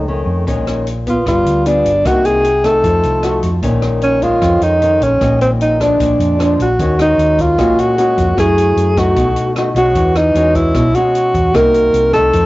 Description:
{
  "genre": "bossa nova",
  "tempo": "152 BPM",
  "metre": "4/4",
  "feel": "straight",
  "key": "Bb minor, Eb minor from 6.8 s",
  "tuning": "A4 = 438 Hz",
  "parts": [
    { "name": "breathy alto saxophone", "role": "melody", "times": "0.0-12.5 s", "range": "C4 to Bb4", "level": "-13 LUFS", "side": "equal", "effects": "cassette tape" },
    { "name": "nylon-string guitar", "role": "accompaniment", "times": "0.0-12.5 s", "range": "F2 to Ab4", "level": "-17 LUFS", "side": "left 1 dB", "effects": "cassette tape" },
    { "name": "hollow-body short-scale fingered electric bass", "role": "bass", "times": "0.0-12.5 s", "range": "G1 to Gb2", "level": "-18 LUFS", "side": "equal", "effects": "transformer saturation" },
    { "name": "open jazz drum kit", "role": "drums", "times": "0.5-12.4 s", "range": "hi-hat, kick drum, rim click", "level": "-24 LUFS", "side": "equal", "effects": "cassette tape" }
  ],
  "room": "light reverb, small room ambience",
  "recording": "home recording on cassette, nothing above 7.7 kHz",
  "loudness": "-11 LUFS",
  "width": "side -18 dB against mid",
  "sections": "0.0-6.8 A section; 6.8-12.5 B section",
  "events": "none",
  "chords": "0.5 Bbm7; 1.3 G7b9; 2.0 Cm7b5; 2.8 F7b9; 3.6 Bbm7; 6.0 Bb7; 6.8 Ebm11; 8.4 Gbm9; 9.2 B7; 10.0 E69; 11.5 Cm7b5",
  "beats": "0.07 | 0.47 0.86 1.26 1.65 | 2.05 2.44 2.84 3.23 | 3.63 4.02 4.42 4.81 | 5.21 5.60 6.00 6.39 | 6.79 7.19 7.58 7.98 | 8.37 8.77 9.16 9.56 | 9.95 10.35 10.74 11.14 | 11.54 11.93 12.33"
}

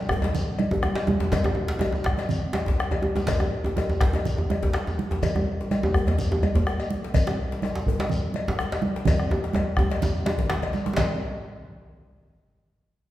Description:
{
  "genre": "west african traditional, West African drum ensemble",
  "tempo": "124 BPM",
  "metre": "4/4",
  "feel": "swing 53% on 16ths",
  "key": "none",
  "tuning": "none",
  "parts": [
    { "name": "bombo", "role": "percussion", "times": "0.1-11.2 s", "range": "none", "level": "-30 LUFS", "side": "equal", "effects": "none" },
    { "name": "djembe", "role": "percussion", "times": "0.1-11.2 s", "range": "none", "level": "-32 LUFS", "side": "left 2 dB", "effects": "none" },
    { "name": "djembe", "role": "percussion", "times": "0.1-11.2 s", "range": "none", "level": "-26 LUFS", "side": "equal", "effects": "none" },
    { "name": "congas", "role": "percussion", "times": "0.2-11.2 s", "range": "none", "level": "-29 LUFS", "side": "right 2 dB", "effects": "none" },
    { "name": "cowbell", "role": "percussion", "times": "0.2-11.2 s", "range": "none", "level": "-32 LUFS", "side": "left 4 dB", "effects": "none" },
    { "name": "shekere", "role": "percussion", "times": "0.3-11.2 s", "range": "none", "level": "-36 LUFS", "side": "left 1 dB", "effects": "none" }
  ],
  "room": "wet recital hall reverb, RT60 1.8 s",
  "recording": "heard from further back in the room",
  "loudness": "-22 LUFS",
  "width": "side -14 dB against mid",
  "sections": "0.0-11.0 A section; 11.0-12.9 B section",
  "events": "speeding up 0.0-12.9; drum fill 2.9-3.3, 9.1-11.0",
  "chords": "none",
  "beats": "0.35 0.84 | 1.33 1.82 2.31 2.80 | 3.28 3.77 4.25 4.74 | 5.22 5.71 6.19 6.67 | 7.15 7.63 8.11 8.59 | 9.07 9.55 10.03 10.50 | 10.98"
}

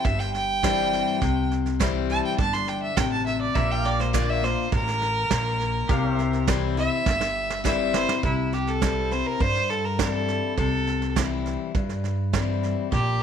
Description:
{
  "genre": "honky-tonk and classic country",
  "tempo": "103 BPM",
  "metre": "4/4",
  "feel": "straight",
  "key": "C mixolydian",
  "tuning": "A4 = 440 Hz",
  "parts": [
    { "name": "rich fiddle", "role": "melody", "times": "0.0-13.2 s", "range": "E4 to C6", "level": "-26 LUFS", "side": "right 3 dB", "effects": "none" },
    { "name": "picked steel-string acoustic guitar", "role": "accompaniment", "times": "0.0-13.2 s", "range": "G2 to F4", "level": "-27 LUFS", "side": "left 11 dB", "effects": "none" },
    { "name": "pedal steel guitar", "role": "sustained chords", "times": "0.0-8.2 s", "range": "G4 to F5", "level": "-35 LUFS", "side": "equal", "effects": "none" },
    { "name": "upright bass", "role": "bass", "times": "0.0-13.2 s", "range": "G1 to G2", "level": "-28 LUFS", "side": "right 1 dB", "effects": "none" },
    { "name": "soft brush drum kit", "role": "drums", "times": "0.0-13.1 s", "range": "hi-hat, kick drum, snare drum", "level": "-28 LUFS", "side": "right 4 dB", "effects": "none" }
  ],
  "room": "light reverb, small room ambience",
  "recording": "1960s-style stereo",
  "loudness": "-22 LUFS",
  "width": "side -8 dB against mid",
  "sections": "0.0-8.2 A section; 8.2-13.2 B section",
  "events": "fiddle solo 0.0-8.2; drum fill 7.1-8.2",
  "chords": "0.0 C; 3.6 Bb; 5.9 C",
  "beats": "0.05 0.63 | 1.22 1.80 2.39 2.97 | 3.56 4.14 4.72 5.31 | 5.89 6.48 7.06 7.65 | 8.23 8.82 9.40 9.99 | 10.57 11.16 11.75 12.33 | 12.92"
}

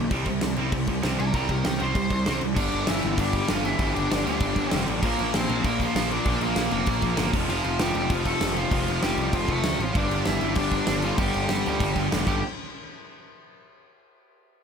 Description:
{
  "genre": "punk rock",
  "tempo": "195 BPM",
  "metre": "4/4",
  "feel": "straight",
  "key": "unclear",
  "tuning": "A4 = 440 Hz",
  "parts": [
    { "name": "distorted electric guitar", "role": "riff", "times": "0.0-12.4 s", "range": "F2 to C4", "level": "-30 LUFS", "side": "left 13 dB", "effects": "distortion" },
    { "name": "tight distorted guitar", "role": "riff", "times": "0.0-12.4 s", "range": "F2 to C4", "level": "-30 LUFS", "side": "right 12 dB", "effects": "distortion" },
    { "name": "fuzz picked electric bass", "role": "bass", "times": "0.0-12.4 s", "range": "F1 to D2", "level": "-29 LUFS", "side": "equal", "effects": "overdrive" },
    { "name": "big rock drum kit", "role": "drums", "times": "0.1-12.3 s", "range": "crash cymbal, kick drum, snare drum", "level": "-28 LUFS", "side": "equal", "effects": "none" },
    { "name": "overdriven electric guitar", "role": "melody", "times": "1.2-12.4 s", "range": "E3 to Bb5", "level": "-29 LUFS", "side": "right 1 dB", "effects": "none" }
  ],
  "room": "light reverb",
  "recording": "none",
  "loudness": "-22 LUFS",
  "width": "side -6 dB against mid",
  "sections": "0.0-2.6 A section; 2.6-12.4 B section; 12.4-13.7 C section",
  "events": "overdriven electric guitar solo 0.0-2.6; drum fill 12.3",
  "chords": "0.1 C5; 2.6 G5; 5.0 Bb; 7.3 F; 10.0 G5; 12.4 N.C.",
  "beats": "| 0.11 0.42 0.73 1.03 | 1.34 1.65 1.96 2.26 | 2.57 2.88 3.19 3.49 | 3.80 4.11 4.42 4.72 | 5.03 5.34 5.65 5.95 | 6.26 6.57 6.88 7.19 | 7.49 7.80 8.11 8.42 | 8.73 9.03 9.34 9.65 | 9.96 10.27 10.57 10.88 | 11.19 11.50 11.81 12.12"
}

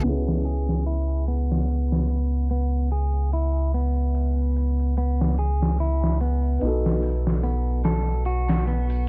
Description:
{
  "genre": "trip hop",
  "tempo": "73 BPM",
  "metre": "4/4",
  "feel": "swing 57% on 16ths",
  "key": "C# minor",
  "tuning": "A4 = 437 Hz",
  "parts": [
    { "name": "dark upright piano", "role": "accompaniment", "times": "0.0-9.1 s", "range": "B3 to A4", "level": "-33 LUFS", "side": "equal", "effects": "harmonic tremolo, tape echo" },
    { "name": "clean electric guitar", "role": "arpeggios", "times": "0.0-9.1 s", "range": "B3 to A4", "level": "-32 LUFS", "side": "equal", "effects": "low-pass filter, tape echo" },
    { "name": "soft dub sub bass", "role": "bass", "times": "0.0-9.1 s", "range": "B1 to C#2", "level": "-25 LUFS", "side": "equal", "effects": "tube saturation" },
    { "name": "dusty soul sampler-style drum kit", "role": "drums", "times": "0.0-9.1 s", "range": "hi-hat, snare drum", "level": "-29 LUFS", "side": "equal", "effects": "low-pass filter on kick, low-pass filter on hats, low-pass filter on snare, low-pass filter on room" },
    { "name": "tambourine", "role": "percussion", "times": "0.1-9.1 s", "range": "none", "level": "-54 LUFS", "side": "equal", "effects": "none" }
  ],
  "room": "little or no reverb",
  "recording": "dark, warm production, vinyl crackle, low-pass filter",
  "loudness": "-24 LUFS",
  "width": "mono",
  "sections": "0.0-9.1 A section",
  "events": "filter sweep on clean electric guitar 0.0-9.1; filter sweep 0.0-9.1",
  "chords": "0.0 C#m7; 6.6 B7",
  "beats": "| 0.04 0.86 1.69 2.51 | 3.33 4.15 4.97 5.80 | 6.62 7.44 8.26 9.08"
}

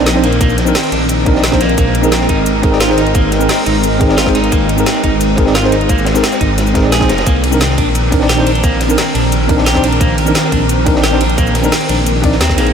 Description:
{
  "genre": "liquid drum and bass",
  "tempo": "175 BPM",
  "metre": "4/4",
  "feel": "straight",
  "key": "C minor",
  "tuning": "A4 = 440 Hz",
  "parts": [
    { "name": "bell-like tine electric piano", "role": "accompaniment", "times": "0.0-12.7 s", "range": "C4 to D5", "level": "-16 LUFS", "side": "equal", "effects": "fast stereo tremolo, analog delay" },
    { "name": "lush unison pad", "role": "sustained chords", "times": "0.0-12.7 s", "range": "Eb3 to Bb4", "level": "-17 LUFS", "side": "equal", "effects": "chorus" },
    { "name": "dark detuned saw bass", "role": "bass", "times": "0.0-12.7 s", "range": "F1 to Eb2", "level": "-16 LUFS", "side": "equal", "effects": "none" },
    { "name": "electric guitar at the edge of break-up", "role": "arpeggios", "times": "0.1-12.7 s", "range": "Bb3 to Ab4", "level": "-20 LUFS", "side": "right 1 dB", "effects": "vintage 12-bit sampler grit, analog delay" },
    { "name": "crunchy breakbeat drum kit", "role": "drums", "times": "0.1-12.7 s", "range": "hi-hat, ride cymbal, snare drum", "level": "-24 LUFS", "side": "equal", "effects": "high-pass filter on cymbals, high-pass filter on hats, high-pass filter on snare, high-pass filter on room" },
    { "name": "garage drum kit", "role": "drums", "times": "0.1-12.7 s", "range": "hi-hat, ride cymbal, shaker, snare drum", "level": "-20 LUFS", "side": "equal", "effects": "none" },
    { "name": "electronic kick drum", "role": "drums", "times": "0.4-12.6 s", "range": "none", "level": "-15 LUFS", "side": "equal", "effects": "none" }
  ],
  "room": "moderate huge ambient reverb, RT60 7.6 s",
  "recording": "dreamy mix soaked in reverb",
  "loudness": "-10 LUFS",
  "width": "side -7 dB against mid",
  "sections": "0.0-12.7 A section",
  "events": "none",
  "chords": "0.0 Cm9; 1.6 Bb9sus4; 7.3 Cm9",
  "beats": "0.06 | 0.41 0.75 1.09 1.44 | 1.78 2.12 2.46 2.81 | 3.15 3.49 3.84 4.18 | 4.52 4.86 5.21 5.55 | 5.89 6.24 6.58 6.92 | 7.26 7.61 7.95 8.29 | 8.64 8.98 9.32 9.66 | 10.01 10.35 10.69 11.04 | 11.38 11.72 12.06 12.41"
}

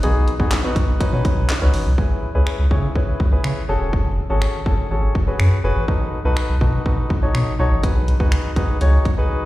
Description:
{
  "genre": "dance-pop",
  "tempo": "123 BPM",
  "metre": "4/4",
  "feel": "straight",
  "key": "C# minor",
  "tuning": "A4 = 440 Hz",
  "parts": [
    { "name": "dark concert grand piano", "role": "accompaniment", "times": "0.0-9.5 s", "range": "B3 to C#5", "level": "-24 LUFS", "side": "left 2 dB", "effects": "sidechain pumping, slapback echo" },
    { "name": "saturated sub bass", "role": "bass", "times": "0.0-9.2 s", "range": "E1 to C#3", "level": "-18 LUFS", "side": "equal", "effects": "sidechain pumping" },
    { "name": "house drum kit", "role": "drums", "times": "0.0-9.2 s", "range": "finger snaps, handclaps, hi-hat, kick drum, snare drum", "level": "-21 LUFS", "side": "equal", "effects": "none" }
  ],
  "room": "little or no reverb",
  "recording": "live gig heard through the venue's PA, recital hall reverb",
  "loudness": "-16 LUFS",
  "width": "side -16 dB against mid",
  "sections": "0.0-2.0 A section; 2.0-9.5 B section",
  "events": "silent gap 9.3",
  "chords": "0.0 G#m7/B; 1.0 Badd9; 2.0 C#m7; 3.7 F#madd9; 5.9 B7; 7.8 G#m7/B",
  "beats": "| 0.03 0.52 1.00 1.49 | 1.98 2.47 2.96 3.44 | 3.93 4.42 4.91 5.40 | 5.88 6.37 6.86 7.35 | 7.83 8.32 8.81 9.30"
}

